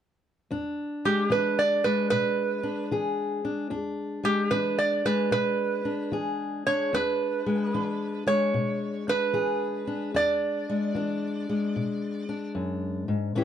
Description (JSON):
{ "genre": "acoustic country blues, solo or duo", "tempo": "75 BPM", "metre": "4/4", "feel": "swing 66% on 8ths", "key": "E mixolydian", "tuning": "A4 = 440 Hz", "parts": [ { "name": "fingerpicked steel-string acoustic guitar", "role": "accompaniment", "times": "0.5-13.4 s", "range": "E2 to G#4", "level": "-28 LUFS", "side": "left 3 dB", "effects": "none" }, { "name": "metal-body resonator slide guitar", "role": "melody", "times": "1.1-12.5 s", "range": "G4 to D5", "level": "-26 LUFS", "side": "right 3 dB", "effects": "plate reverb" } ], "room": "moderate small room reverb, RT60 0.5 s", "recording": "dark, warm production", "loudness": "-25 LUFS", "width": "side -9 dB against mid", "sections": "0.5-13.4 A section", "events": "none", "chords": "0.5 E7", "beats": "| 0.51 1.31 2.12 2.92 | 3.72 4.53 5.33 6.13 | 6.93 7.74 8.54 9.34 | 10.14 10.95 11.75 12.55 | 13.35" }